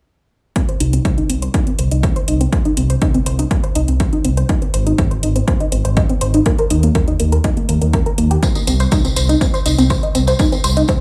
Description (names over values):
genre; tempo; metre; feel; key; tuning
melodic techno; 122 BPM; 4/4; straight; C minor; A4 = 440 Hz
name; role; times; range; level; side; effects
tight sequenced synth; arpeggios; 0.6-10.9 s; Bb3 to C5; -22 LUFS; equal; chorus, phaser, sidechain pumping, digital delay
electronic hi-hat; drums; 0.6-11.0 s; none; -30 LUFS; equal; overdrive, sidechain pumping on hats
electronic kick drum; drums; 0.6-11.0 s; none; -20 LUFS; equal; overdrive
dark detuned saw bass; bass; 0.8-11.0 s; Ab1 to Eb2; -19 LUFS; equal; tube saturation, sidechain pumping
tambourine; percussion; 8.4-11.0 s; none; -27 LUFS; equal; none
room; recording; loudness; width
light reverb, digital ambience; studio reverb; -16 LUFS; mono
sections
0.6-11.0 A section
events
filter sweep on detuned saw bass 0.6-11.0; filter sweep on synth arpeggio sound 0.6-11.0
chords
0.6 Cm; 4.5 Ab; 6.5 Eb5; 8.4 Cm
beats
| 0.56 1.05 1.54 2.03 | 2.52 3.02 3.51 4.00 | 4.49 4.98 5.48 5.97 | 6.46 6.95 7.44 7.93 | 8.43 8.92 9.41 9.90 | 10.39 10.89